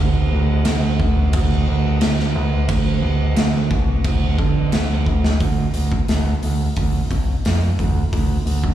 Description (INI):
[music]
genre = hard rock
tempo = 88 BPM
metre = 4/4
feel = straight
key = D minor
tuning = A4 = 439 Hz
[part]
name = growling picked electric bass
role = bass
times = 0.0-8.7 s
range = C2 to D3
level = -18 LUFS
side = right 1 dB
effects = overdrive
[part]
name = big rock drum kit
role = drums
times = 0.6-8.7 s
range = crash cymbal, hi-hat, kick drum, snare drum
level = -20 LUFS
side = equal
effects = none
[sound]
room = little or no reverb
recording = live gig heard through the venue's PA, recital hall reverb, small room ambience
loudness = -16 LUFS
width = side -11 dB against mid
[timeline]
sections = 0.0-5.4 A section; 5.4-8.7 B section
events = drum fill 5.1-5.4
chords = none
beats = 0.66 1.34 2.02 | 2.69 3.37 4.05 4.73 | 5.41 6.09 6.77 7.45 | 8.12